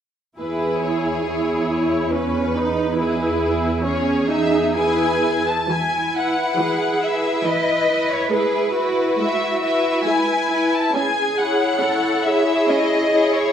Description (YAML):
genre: classical, slow romantic movement for string orchestra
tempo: 69 BPM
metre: 3/4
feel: rubato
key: E major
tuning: A4 = 440 Hz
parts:
  - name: warm symphonic violin section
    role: melody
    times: 0.4-13.5 s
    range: B4 to A5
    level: -22 LUFS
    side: left 3 dB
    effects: none
  - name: clear symphonic violin section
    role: second line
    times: 0.4-13.5 s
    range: E4 to C#5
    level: -23 LUFS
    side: equal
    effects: none
  - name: warm symphonic viola section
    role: accompaniment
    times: 0.4-13.4 s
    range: E3 to E4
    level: -24 LUFS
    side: right 2 dB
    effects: none
  - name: rich symphonic cello section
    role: bass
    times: 0.4-13.5 s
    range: E2 to B4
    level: -24 LUFS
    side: right 2 dB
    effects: none
room: wet scoring stage reverb, RT60 1.5 s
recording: none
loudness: -17 LUFS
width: side -8 dB against mid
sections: 0.4-5.7 A section; 5.7-13.5 B section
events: none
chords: 0.4 E; 8.3 E/G#; 10.9 C#m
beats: | 0.40 1.27 2.12 | 2.98 3.84 4.75 | 5.70 6.58 7.46 | 8.32 9.19 10.06 | 10.94 11.80 12.68